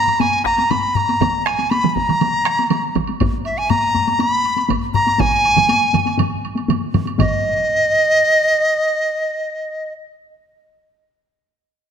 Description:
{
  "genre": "japanese traditional, taiko drum ensemble",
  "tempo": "120 BPM",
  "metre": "4/4",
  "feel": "straight",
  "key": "Eb miyako bushi",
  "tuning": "A4 = 441 Hz",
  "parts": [
    { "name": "bright large dizi", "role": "melody", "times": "0.0-9.9 s", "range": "Eb5 to Cb6", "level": "-16 LUFS", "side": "equal", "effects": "none" },
    { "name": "taiko ensemble", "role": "percussion", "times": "0.1-7.7 s", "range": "none", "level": "-24 LUFS", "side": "left 5 dB", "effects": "none" },
    { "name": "woodblock", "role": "percussion", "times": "0.1-7.4 s", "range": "none", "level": "-31 LUFS", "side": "right 8 dB", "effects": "none" },
    { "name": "taiko ensemble", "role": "percussion", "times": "0.2-7.4 s", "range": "none", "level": "-24 LUFS", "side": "left 3 dB", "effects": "none" },
    { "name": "taiko ensemble", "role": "percussion", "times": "0.4-7.4 s", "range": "none", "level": "-25 LUFS", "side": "right 1 dB", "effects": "none" },
    { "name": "taiko ensemble", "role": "percussion", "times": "1.2-7.6 s", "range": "none", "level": "-22 LUFS", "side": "right 5 dB", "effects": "none" }
  ],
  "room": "moderate concert hall reverb, RT60 1.9 s",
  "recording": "none",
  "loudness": "-15 LUFS",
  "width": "side -7 dB against mid",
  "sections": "0.0-7.2 A section; 7.2-9.2 B section",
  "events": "none",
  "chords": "none"
}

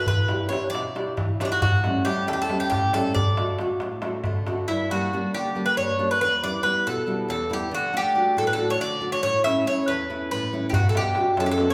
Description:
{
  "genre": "greek folk, Greek bouzouki band",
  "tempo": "276 BPM (eighths)",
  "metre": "7/8",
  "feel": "straight",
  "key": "D major",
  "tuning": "A4 = 436 Hz",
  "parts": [
    { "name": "Greek bouzouki", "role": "melody", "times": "0.0-11.7 s", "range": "C#4 to E5", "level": "-26 LUFS", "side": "equal", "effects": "none" },
    { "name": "nylon-string guitar", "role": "accompaniment", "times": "0.0-11.7 s", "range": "E2 to F#5", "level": "-30 LUFS", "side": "equal", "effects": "none" },
    { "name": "darbuka", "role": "percussion", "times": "0.1-4.6, 10.7-11.7 s", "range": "none", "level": "-28 LUFS", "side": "equal", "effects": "none" }
  ],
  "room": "wet large studio reverb, RT60 1.3 s",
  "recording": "band playing live in one room",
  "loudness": "-24 LUFS",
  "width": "mono",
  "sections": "0.0-4.7 A section; 4.7-11.7 B section",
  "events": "speeding up 0.0-11.7",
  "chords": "0.1 Em7; 1.6 A7; 3.2 D; 4.7 Gm; 6.2 Em; 7.7 D; 9.2 A; 10.7 Bm"
}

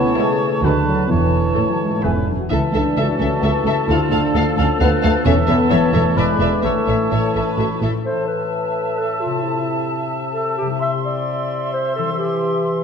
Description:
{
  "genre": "cinematic, playful, whimsical film cue",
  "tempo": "131 BPM",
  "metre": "3/4",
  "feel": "straight",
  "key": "A major, A minor from 8.1 s",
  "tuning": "A4 = 444 Hz",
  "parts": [
    { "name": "dark clarinet", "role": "second line", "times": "0.0-12.8 s", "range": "E4 to E5", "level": "-24 LUFS", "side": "left 1 dB", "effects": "none" },
    { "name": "flute section", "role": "second line", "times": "0.0-12.8 s", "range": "G#5 to C6", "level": "-26 LUFS", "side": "right 1 dB", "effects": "none" },
    { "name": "warm oboe", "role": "second line", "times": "0.0-12.8 s", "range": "A4 to E5", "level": "-28 LUFS", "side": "right 2 dB", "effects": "none" },
    { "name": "mellow bassoon", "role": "accompaniment", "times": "0.0-12.8 s", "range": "A2 to F3", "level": "-27 LUFS", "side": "equal", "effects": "none" },
    { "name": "dark French horn section", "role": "sustained chords", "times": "0.0-7.8 s", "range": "E3 to F#4", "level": "-22 LUFS", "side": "left 2 dB", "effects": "none" },
    { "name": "concert harp", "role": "arpeggios", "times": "0.0-12.8 s", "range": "A2 to E5", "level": "-25 LUFS", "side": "left 6 dB", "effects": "none" },
    { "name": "muted chamber cello section", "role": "bass", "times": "0.0-7.9 s", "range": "C#2 to D3", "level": "-23 LUFS", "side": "right 2 dB", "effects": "none" },
    { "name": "muted chamber double bass section", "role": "bass", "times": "0.0-7.9 s", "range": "E1 to D2", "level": "-22 LUFS", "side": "right 3 dB", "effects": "none" },
    { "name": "muted chamber violin section", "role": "melody", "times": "0.2-7.9 s", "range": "B4 to F5", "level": "-27 LUFS", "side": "left 4 dB", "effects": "none" },
    { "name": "muted studio violin section", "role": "second line", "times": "0.2-7.9 s", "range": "A4 to D5", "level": "-31 LUFS", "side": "left 3 dB", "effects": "none" },
    { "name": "muted symphonic viola section", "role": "accompaniment", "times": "0.2-7.9 s", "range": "E4 to B4", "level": "-29 LUFS", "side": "right 1 dB", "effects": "none" }
  ],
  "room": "wet scoring stage reverb, RT60 1.6 s",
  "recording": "dark, warm production",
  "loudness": "-16 LUFS",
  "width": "side -6 dB against mid",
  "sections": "0.0-8.1 A section; 8.1-12.8 B section",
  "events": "none",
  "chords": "0.0 A/C#; 0.6 Bm7/D; 1.1 A/E; 2.0 E; 2.5 A/C#; 3.9 Dm; 5.3 A/E; 6.2 E7; 6.6 A; 8.1 Am; 9.4 Am/C; 10.8 C; 12.2 C/E"
}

